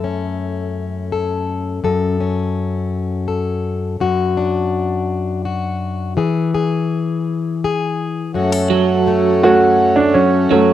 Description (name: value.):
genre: acoustic folk-pop ballad.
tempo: 55 BPM (dotted quarters).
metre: 6/8.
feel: straight.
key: F# minor.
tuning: A4 = 438 Hz.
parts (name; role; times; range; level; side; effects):
fingerpicked plugged-in steel-string acoustic guitar; accompaniment; 0.0-10.7 s; F#2 to A4; -18 LUFS; left 4 dB; cassette tape.
pedal harmonium; sustained chords; 8.3-10.7 s; A3 to F#4; -19 LUFS; equal; cassette tape.
electric guitar through a small old amp; arpeggios; 8.7-10.7 s; F#3; -17 LUFS; right 7 dB; tremolo, cassette tape.
clear concert grand piano; melody; 9.4-10.7 s; F#3 to F#4; -11 LUFS; right 2 dB; cassette tape.
room: wet studio reverb, RT60 0.6 s.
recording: home recording on cassette.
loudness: -15 LUFS.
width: side -12 dB against mid.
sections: 0.0-8.3 A section; 8.3-10.7 B section.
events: none.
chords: 0.0 F#m; 4.0 D/F#; 6.2 E; 8.3 F#m.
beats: 0.74 | 1.82 2.91 | 3.99 5.08 | 6.16 7.25 | 8.34 9.43 | 10.51.